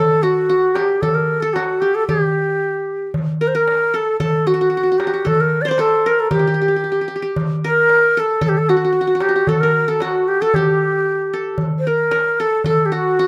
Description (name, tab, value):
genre	Arabic maqam ensemble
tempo	114 BPM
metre	4/4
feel	straight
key	unclear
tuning	A4 = 442 Hz
part	reedy ney	melody	0.0-13.3 s	F#4 to D5	-18 LUFS	equal	none
part	qanun	second line	0.0-13.3 s	F#4 to D5	-25 LUFS	equal	none
part	darbuka	percussion	0.4-13.1 s	none	-25 LUFS	equal	none
room	light reverb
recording	none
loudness	-17 LUFS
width	mono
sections	0.0-13.3 A section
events	none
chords	none